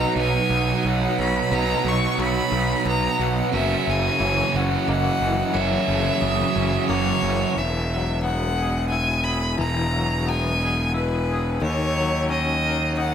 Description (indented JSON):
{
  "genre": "post-rock",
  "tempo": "89 BPM",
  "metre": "3/4",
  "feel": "straight",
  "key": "E lydian",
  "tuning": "A4 = 440 Hz",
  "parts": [
    { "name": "bright violin", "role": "melody", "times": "0.0-13.1 s", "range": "B4 to C#6", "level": "-25 LUFS", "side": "left 3 dB", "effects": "slapback echo" },
    { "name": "twangy electric guitar", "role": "arpeggios", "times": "0.0-13.1 s", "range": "F#2 to A#4", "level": "-29 LUFS", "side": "left 3 dB", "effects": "tremolo, slapback echo" },
    { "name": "vibraphone with hard mallets", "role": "arpeggios", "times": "0.0-7.6 s", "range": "B4 to D#6", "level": "-31 LUFS", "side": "right 2 dB", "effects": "slapback echo" },
    { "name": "distorted electric guitar", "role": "riff", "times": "0.0-7.5 s", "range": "F#2 to D#4", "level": "-24 LUFS", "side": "right 7 dB", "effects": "distortion, slapback echo" },
    { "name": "fuzz picked electric bass", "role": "bass", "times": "0.0-13.1 s", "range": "E1 to D#2", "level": "-24 LUFS", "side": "equal", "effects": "overdrive" }
  ],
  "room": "wet recital hall reverb, RT60 1.6 s, small room ambience",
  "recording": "big arena sound",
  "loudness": "-20 LUFS",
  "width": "side -8 dB against mid",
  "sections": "0.0-7.6 A section; 7.6-13.1 B section",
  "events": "none",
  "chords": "0.0 B; 3.5 F#7; 7.6 Eadd9; 11.6 D#m7",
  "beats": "0.18 0.85 | 1.52 2.19 2.86 | 3.53 4.20 4.88 | 5.55 6.22 6.89 | 7.57 8.24 8.91 | 9.59 10.26 10.94 | 11.61 12.29 12.96"
}